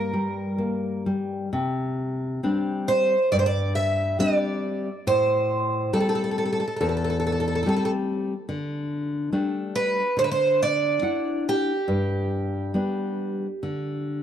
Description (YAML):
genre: fado-style ballad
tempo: 69 BPM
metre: 4/4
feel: uneven beats, rubato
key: unclear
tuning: A4 = 440 Hz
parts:
  - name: picked twelve-string acoustic guitar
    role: melody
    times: 0.0-14.2 s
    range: G4 to E5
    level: -24 LUFS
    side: right 2 dB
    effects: none
  - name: nylon-string guitar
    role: accompaniment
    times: 0.0-14.2 s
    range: E2 to F#5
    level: -26 LUFS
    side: left 2 dB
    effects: none
room: small room reverb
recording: dry, close 1970s-style studio recording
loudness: -22 LUFS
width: side -9 dB against mid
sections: 0.0-1.5 A section; 1.5-14.2 B section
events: none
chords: 0.0 Gm; 1.5 Csus2; 5.0 Am7; 8.5 Dsus4; 10.2 Dadd9; 11.9 G